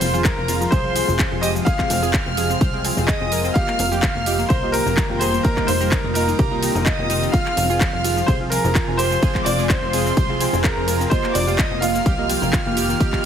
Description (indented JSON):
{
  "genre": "progressive house",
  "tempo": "127 BPM",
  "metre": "4/4",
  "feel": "straight",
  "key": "F minor",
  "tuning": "A4 = 440 Hz",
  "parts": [
    { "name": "bright concert grand piano", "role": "melody", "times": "0.0-13.3 s", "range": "Bb4 to F5", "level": "-24 LUFS", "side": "left 1 dB", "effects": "sidechain pumping, ping-pong delay" },
    { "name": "warm studio violin section", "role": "second line", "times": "0.0-13.3 s", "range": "Bb5 to F6", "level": "-28 LUFS", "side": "right 2 dB", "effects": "sidechain pumping, dub echo" },
    { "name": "shimmering ambient pad", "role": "sustained chords", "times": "0.0-13.3 s", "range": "C3 to F4", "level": "-28 LUFS", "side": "left 1 dB", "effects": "chorus, built-in reverb, sidechain pumping" },
    { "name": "analog pluck", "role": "arpeggios", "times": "0.0-13.2 s", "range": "F3 to C5", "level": "-28 LUFS", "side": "left 2 dB", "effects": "chorus, sidechain pumping, dub echo" },
    { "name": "deep mellow chord stab", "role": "stabs", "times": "0.0-13.3 s", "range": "F3 to Ab5", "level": "-27 LUFS", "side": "right 3 dB", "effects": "chorus, phaser, sidechain pumping" },
    { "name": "plucky analog bass", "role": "bass", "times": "0.0-13.0 s", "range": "F1 to C2", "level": "-25 LUFS", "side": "equal", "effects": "sidechain pumping" },
    { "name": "house drum kit", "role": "drums", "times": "0.0-13.2 s", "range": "cabasa, handclaps, hi-hat, ride cymbal", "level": "-26 LUFS", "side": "right 1 dB", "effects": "none" },
    { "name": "electronic kick drum", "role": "drums", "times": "0.2-13.2 s", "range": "none", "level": "-20 LUFS", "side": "equal", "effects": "none" }
  ],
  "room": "light reverb, digital ambience",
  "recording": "heavily compressed radio sound",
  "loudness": "-17 LUFS",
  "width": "side -8 dB against mid",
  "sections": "0.0-13.3 A section",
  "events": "none",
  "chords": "0.0 Fm; 3.6 Ebadd9/F; 7.3 Fm; 11.1 Ebadd9/F"
}